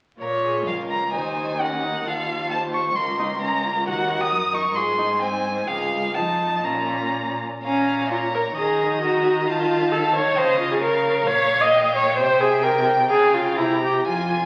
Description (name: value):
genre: quick classical-period movement for string quartet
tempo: 119-136 BPM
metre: 2/4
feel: rubato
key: Bb minor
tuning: A4 = 440 Hz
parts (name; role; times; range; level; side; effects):
- rich violin; melody; 0.2-14.5 s; Db5 to Eb6; -27 LUFS; equal; none
- rich violin; second line; 0.2-14.5 s; F4 to Ab5; -31 LUFS; equal; none
- warm viola; accompaniment; 0.2-14.5 s; C4 to Eb5; -24 LUFS; equal; none
- rich cello; bass; 0.2-14.5 s; Db2 to Eb3; -31 LUFS; equal; none
room: wet recital hall reverb, RT60 1.4 s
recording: very old 78 rpm record, vinyl crackle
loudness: -21 LUFS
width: mono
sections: 0.2-7.6 A section; 7.6-14.5 A section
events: none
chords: 0.2 Bbm; 1.1 Ebm; 2.1 F7/Eb; 3.0 Bbm/Db; 3.9 Ebm; 4.8 Ab; 5.7 Db; 6.1 F7; 6.6 Bbm; 8.6 Ebm; 9.5 F7/Eb; 10.4 Bbm/Db; 11.3 Bbm6; 12.2 C; 13.1 Db; 13.6 C7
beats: | 0.21 0.67 | 1.14 1.60 | 2.06 2.52 | 2.97 3.41 | 3.86 4.31 | 4.77 5.22 | 5.68 6.15 | 6.64 7.14 | 7.63 8.10 | 8.56 9.01 | 9.47 9.92 | 10.36 10.81 | 11.26 11.72 | 12.18 12.64 | 13.10 13.57 | 14.06